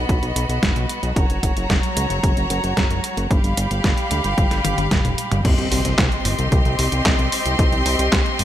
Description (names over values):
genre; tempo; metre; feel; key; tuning
italo disco; 112 BPM; 4/4; straight; unclear; A4 = 439 Hz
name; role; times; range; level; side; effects
clear studio string section; sustained chords; 0.0-8.4 s; Gb3 to C6; -23 LUFS; equal; none
fat analog bass; bass; 0.0-8.4 s; F1 to D2; -23 LUFS; equal; none
detuned 8-bit digital drum machine; drums; 0.1-8.4 s; crash cymbal, handclaps, hi-hat, snare drum, toms; -23 LUFS; equal; none
electronic kick drum; drums; 0.1-8.2 s; none; -20 LUFS; equal; none
impact; sound effects; 5.4-7.6 s; none; -29 LUFS; equal; none
room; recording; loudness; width
light reverb; none; -17 LUFS; side -12 dB against mid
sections
0.0-5.4 A section; 5.4-8.4 B section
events
drum fill 4.6-5.4; impact 5.4-7.6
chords
0.0 B; 1.2 Gb; 3.3 G7; 5.4 Cm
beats
0.09 0.63 | 1.16 1.70 2.23 2.77 | 3.31 3.84 4.38 4.91 | 5.45 5.98 6.52 7.05 | 7.59 8.13